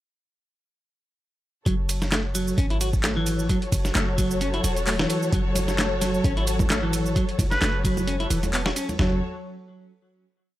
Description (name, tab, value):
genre	breakbeat, breaks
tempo	131 BPM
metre	4/4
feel	swing 55% on 16ths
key	F# minor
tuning	A4 = 440 Hz
part	dark studio string section	sustained chords	1.7-9.2 s	F#3 to C#5	-30 LUFS	left 2 dB	sidechain pumping
part	clean electric guitar	riff	1.7-9.2 s	E3 to F#4	-28 LUFS	right 1 dB	tape echo
part	warm 808-style bass	bass	1.7-9.2 s	E1 to G#1	-27 LUFS	equal	none
part	dusty soul sampler-style drum kit	drums	1.7-9.1 s	hi-hat, kick drum, snare drum, toms	-26 LUFS	equal	none
part	house drum kit	drums	1.7-9.0 s	handclaps, ride cymbal, shaker	-31 LUFS	right 1 dB	none
part	congas	percussion	5.6-9.0 s	none	-32 LUFS	right 1 dB	none
part	trumpet with straight mute	melody	7.5-7.8 s	B4	-30 LUFS	right 1 dB	small speaker sound, tape echo
room	little or no reverb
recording	dry, gritty hardware recording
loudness	-21 LUFS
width	side -15 dB against mid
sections	1.7-9.0 drop; 9.0-10.6 final chord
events	drop 1.7-9.0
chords	1.7 F#m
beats	| 1.66 2.12 2.58 3.04 | 3.49 3.95 4.41 4.87 | 5.33 5.78 6.24 6.70 | 7.16 7.62 8.07 8.53 | 8.99